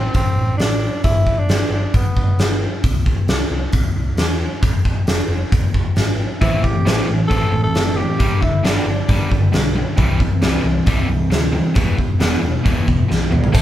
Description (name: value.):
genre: classic rock.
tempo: 134 BPM.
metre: 4/4.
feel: straight.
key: A minor.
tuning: A4 = 440 Hz.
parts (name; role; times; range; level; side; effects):
growling tenor saxophone; melody; 0.0-2.6, 6.4-9.5 s; B3 to A4; -23 LUFS; equal; none.
hollow-body short-scale picked electric bass; bass; 0.0-13.6 s; E1 to E2; -22 LUFS; equal; none.
big rock drum kit; drums; 0.1-13.6 s; crash cymbal, hi-hat, kick drum, snare drum, toms; -17 LUFS; equal; none.
picked steel-string acoustic guitar; accompaniment; 6.4-13.6 s; A2 to C5; -27 LUFS; right 3 dB; none.
overdriven electric guitar; riff; 6.4-13.6 s; E2 to A4; -20 LUFS; equal; none.
cowbell; percussion; 13.5-13.6 s; none; -28 LUFS; right 3 dB; none.
room: light reverb.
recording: band playing live in one room.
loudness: -15 LUFS.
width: side -12 dB against mid.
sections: 0.0-13.5 A section.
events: drum fill 13.1-13.5.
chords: 0.0 Am; 1.0 G; 2.8 C; 4.6 Fm; 6.4 Am; 8.2 G; 10.0 C; 11.8 Em.